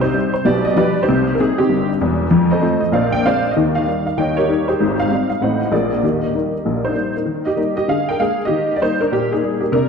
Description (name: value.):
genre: jazz, stride piano.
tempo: 194 BPM.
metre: 4/4.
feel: swing 62% on 8ths.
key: Eb major.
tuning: A4 = 440 Hz.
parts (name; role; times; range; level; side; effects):
honky-tonk upright piano; solo; 0.0-9.9 s; Fb1 to G5; -15 LUFS; equal; none.
room: wet concert hall reverb, RT60 1.9 s.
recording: dark, warm production.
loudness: -15 LUFS.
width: side -6 dB against mid.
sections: 0.0-7.3 A section; 7.3-9.9 A section.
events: none.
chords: 0.5 G7/B; 1.1 Cm7; 2.3 F7; 2.9 Bb9; 3.6 Eb; 4.2 Eb7; 4.8 Abmaj7; 5.4 Adim7; 5.7 Bb7; 6.0 Eb; 7.9 Bb7/D; 8.5 Eb.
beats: 0.15 0.46 0.77 | 1.08 1.39 1.70 2.01 | 2.32 2.62 2.94 3.24 | 3.55 3.86 4.17 4.48 | 4.79 5.10 5.41 5.72 | 6.03 6.34 6.65 6.96 | 7.26 7.57 7.88 8.19 | 8.50 8.81 9.12 9.43 | 9.73.